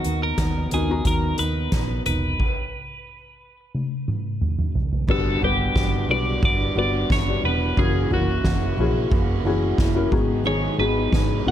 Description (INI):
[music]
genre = piano-driven pop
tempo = 89 BPM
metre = 4/4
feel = straight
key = unclear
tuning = A4 = 440 Hz
[part]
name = twelve-string electric guitar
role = melody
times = 0.0-11.5 s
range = F#4 to F#5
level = -27 LUFS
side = equal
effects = phaser
[part]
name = felt-muted upright piano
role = accompaniment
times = 0.0-11.5 s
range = G2 to A#5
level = -26 LUFS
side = left 7 dB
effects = none
[part]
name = fingerpicked steel-string acoustic guitar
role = riff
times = 0.0-11.5 s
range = F#2 to A#4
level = -28 LUFS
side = right 4 dB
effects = none
[part]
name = soft-mallet drum kit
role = drums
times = 0.0-11.5 s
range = crash cymbal, hi-hat, kick drum, ride cymbal, snare drum, toms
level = -24 LUFS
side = right 1 dB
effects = none
[part]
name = vintage muted fingered electric bass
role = bass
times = 0.1-11.5 s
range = E1 to D#2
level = -25 LUFS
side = equal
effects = none
[sound]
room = light reverb, studio reverb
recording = none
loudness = -19 LUFS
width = side -10 dB against mid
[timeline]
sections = 0.0-5.1 A section; 5.1-11.5 B section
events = stop 2.4-5.1; drum fill 3.7-5.1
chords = 0.0 Bmaj7/D#; 2.4 N.C.; 5.1 Gmaj7; 7.8 F#7; 10.1 G#m7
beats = 0.39 1.06 1.73 | 2.40 3.07 3.75 4.42 | 5.09 5.76 6.43 7.10 | 7.78 8.45 9.12 9.79 | 10.46 11.13